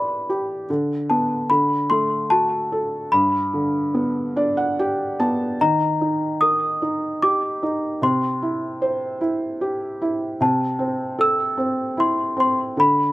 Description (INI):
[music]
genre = children's music, lullaby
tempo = 74 BPM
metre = 3/4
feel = rubato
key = unclear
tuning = A4 = 438 Hz
[part]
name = worn celesta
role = melody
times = 0.0-13.1 s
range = A5 to E6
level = -20 LUFS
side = left 1 dB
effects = slapback echo
[part]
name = felt-muted upright piano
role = accompaniment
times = 0.0-13.1 s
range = G2 to A5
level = -22 LUFS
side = right 1 dB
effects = none
[sound]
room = little or no reverb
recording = recorded outdoors, with no room sound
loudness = -19 LUFS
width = side -17 dB against mid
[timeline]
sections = 0.0-5.6 A section; 5.6-13.1 B section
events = felt piano fill 3.9-5.6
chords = 0.0 Em7; 0.7 Bm7/D; 1.5 D; 3.1 G; 5.6 Eb; 8.0 C; 10.4 Am/C